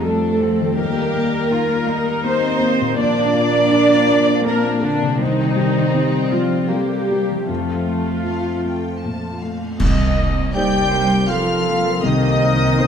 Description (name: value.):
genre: cinematic, emotional film score for orchestra.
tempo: 81 BPM.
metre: 3/4.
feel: rubato.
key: C dorian.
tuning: A4 = 440 Hz.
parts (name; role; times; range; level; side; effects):
rich studio violin section; second line; 0.0-12.9 s; A3 to G5; -26 LUFS; left 3 dB; none.
felt-muted upright piano; accompaniment; 0.0-12.9 s; Bb1 to C5; -24 LUFS; left 2 dB; none.
warm studio viola section; accompaniment; 0.0-12.9 s; D4 to Eb5; -21 LUFS; right 2 dB; none.
dark French horn section; sustained chords; 0.0-12.9 s; F3 to C4; -26 LUFS; left 4 dB; none.
concert harp; arpeggios; 0.0-12.9 s; Bb2 to Eb5; -26 LUFS; left 4 dB; none.
dark studio cello section; bass; 0.0-12.9 s; D3 to D4; -22 LUFS; right 2 dB; none.
cymbal swell, clash cymbals and concert bass drum; percussion; 7.5-11.3 s; none; -23 LUFS; equal; none.
clear studio violin section; melody; 8.3-12.9 s; F5 to G6; -27 LUFS; left 4 dB; none.
rich studio double bass section; bass; 9.8-12.7 s; C2; -23 LUFS; right 3 dB; none.
flute section; second line; 10.5-12.9 s; Eb5 to G5; -23 LUFS; right 2 dB; none.
warm clarinet; second line; 10.6-12.9 s; Eb4 to G4; -25 LUFS; left 4 dB; none.
room: moderate scoring stage reverb, RT60 1.8 s.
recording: dark, warm production.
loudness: -16 LUFS.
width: side -7 dB against mid.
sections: 0.0-9.8 A section; 9.8-12.9 B section.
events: band accent 9.8-10.6.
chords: 0.0 F; 0.8 Eb; 3.0 Bb; 5.2 Cm; 7.5 F; 9.8 Cm7.